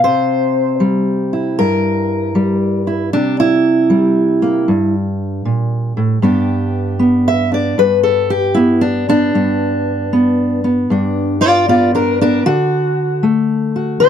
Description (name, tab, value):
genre	acoustic country blues, solo or duo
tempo	77 BPM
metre	4/4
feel	swing 66% on 8ths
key	G major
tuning	A4 = 440 Hz
part	fingerpicked steel-string acoustic guitar	solo	0.0-14.1 s	G2 to E5	-12 LUFS	equal	none
room	moderate small room reverb, RT60 0.6 s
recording	none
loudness	-12 LUFS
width	side -8 dB against mid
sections	0.0-14.1 A section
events	steel-string acoustic guitar solo 0.0-14.1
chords	0.0 C7; 6.2 G; 12.4 D